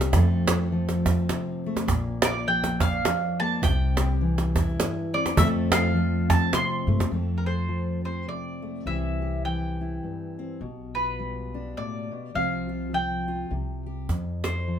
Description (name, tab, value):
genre	acoustic folk duo or small band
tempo	103 BPM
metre	3/4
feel	swing 59% on 8ths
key	F major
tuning	A4 = 440 Hz
part	fingerpicked steel-string acoustic guitar	accompaniment	0.0-14.8 s	F2 to A4	-28 LUFS	left 1 dB	none
part	upright bass	bass	0.0-14.8 s	Bb1 to G2	-28 LUFS	equal	none
part	cajon	percussion	0.0-7.1, 14.1-14.6 s	none	-25 LUFS	right 3 dB	none
part	mandolin	melody	2.2-14.8 s	Bb4 to C6	-29 LUFS	right 1 dB	none
room	light reverb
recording	minimal, uncompressed stereo recording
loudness	-23 LUFS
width	side -9 dB against mid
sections	0.0-7.1 A section; 7.1-14.8 B section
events	mandolin solo 0.0-7.1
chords	0.1 F; 1.9 Bb; 3.6 C; 5.4 F; 8.9 C; 10.6 G7/B; 12.3 Csus4; 13.5 C5; 14.1 F